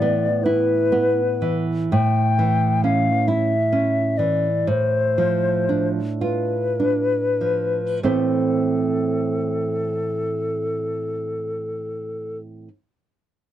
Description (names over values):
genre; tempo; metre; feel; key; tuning
romantic duo for flute and classical guitar; 31-46 BPM (dotted quarters); 6/8; rubato; A minor; A4 = 440 Hz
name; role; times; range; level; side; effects
hollow concert flute; melody; 0.0-12.4 s; A4 to G5; -22 LUFS; left 4 dB; none
nylon-string guitar; accompaniment; 0.0-12.7 s; A2 to C5; -22 LUFS; right 3 dB; none
room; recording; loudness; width
light reverb; dry, close 1970s-style studio recording; -19 LUFS; side -11 dB against mid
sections
0.0-8.0 A section; 8.0-11.6 B section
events
slowing down 0.4-8.0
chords
0.0 E5/A; 1.9 A7; 4.7 Dm/A; 8.0 Am